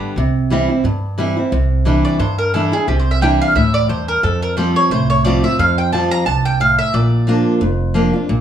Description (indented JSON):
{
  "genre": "bluegrass",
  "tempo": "177 BPM",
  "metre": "4/4",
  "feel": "swing 56% on 8ths",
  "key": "C mixolydian",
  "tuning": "A4 = 440 Hz",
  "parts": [
    { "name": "mandolin", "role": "melody", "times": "0.0-7.6 s", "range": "G4 to Bb5", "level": "-17 LUFS", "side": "right 2 dB", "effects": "plate reverb" },
    { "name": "picked old ladder-braced acoustic guitar", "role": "accompaniment", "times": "0.0-8.4 s", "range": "F2 to G4", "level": "-17 LUFS", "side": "left 1 dB", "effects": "none" },
    { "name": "upright bass", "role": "bass", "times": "0.2-8.4 s", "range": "F1 to G2", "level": "-18 LUFS", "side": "right 2 dB", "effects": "none" }
  ],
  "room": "moderate studio reverb, RT60 0.8 s",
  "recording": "studio ambience",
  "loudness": "-13 LUFS",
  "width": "side -9 dB against mid",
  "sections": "0.0-1.5 A section; 1.5-8.4 B section",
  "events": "none",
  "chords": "0.2 C; 1.5 Cadd9; 4.2 Fadd9; 6.9 Bb"
}